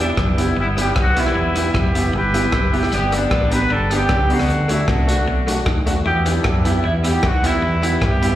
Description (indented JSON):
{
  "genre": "ska",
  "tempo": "153 BPM",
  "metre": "4/4",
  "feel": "straight",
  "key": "unclear",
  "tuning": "A4 = 442 Hz",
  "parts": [
    { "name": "warm horn section", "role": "melody", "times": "0.0-8.4 s", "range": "G3 to B4", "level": "-20 LUFS", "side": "equal", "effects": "plate reverb, slapback echo" },
    { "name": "mellow electric guitar", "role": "accompaniment", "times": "0.0-8.3 s", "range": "A3 to G4", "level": "-26 LUFS", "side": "right 4 dB", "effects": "dub echo, plate reverb, slapback echo" },
    { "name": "clear upright piano", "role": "stabs", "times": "0.0-8.4 s", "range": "A3 to G4", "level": "-26 LUFS", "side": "left 3 dB", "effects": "plate reverb, slapback echo" },
    { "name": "hollow-body short-scale fingered electric bass", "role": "bass", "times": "0.0-8.3 s", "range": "E1 to G2", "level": "-20 LUFS", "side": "equal", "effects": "none" },
    { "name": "clean electric guitar", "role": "riff", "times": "0.2-8.1 s", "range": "E3 to G4", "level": "-30 LUFS", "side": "left 3 dB", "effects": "dub echo, slapback echo" },
    { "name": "crunchy breakbeat drum kit", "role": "drums", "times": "0.2-8.3 s", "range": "hi-hat, kick drum, rim click", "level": "-22 LUFS", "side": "equal", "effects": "dub echo" }
  ],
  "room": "light reverb",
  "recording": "live gig heard through the venue's PA, recital hall reverb",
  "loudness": "-15 LUFS",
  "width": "side -13 dB against mid",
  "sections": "0.0-8.4 A section",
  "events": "none",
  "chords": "0.0 Em; 2.9 G; 4.5 D; 6.1 Em"
}